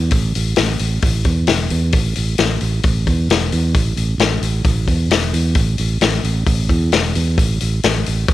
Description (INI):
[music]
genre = blues rock power trio and southern rock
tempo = 132 BPM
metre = 4/4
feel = straight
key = unclear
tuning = A4 = 439 Hz
[part]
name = modern bright fingered electric bass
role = bass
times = 0.0-8.3 s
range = E1 to E2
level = -18 LUFS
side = right 1 dB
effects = none
[part]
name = vintage drum kit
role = drums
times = 0.1-8.3 s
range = hi-hat, kick drum, snare drum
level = -17 LUFS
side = left 2 dB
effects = none
[sound]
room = little or no reverb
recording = 1960s-style stereo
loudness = -14 LUFS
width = side -14 dB against mid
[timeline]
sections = 0.0-8.3 A section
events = none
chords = none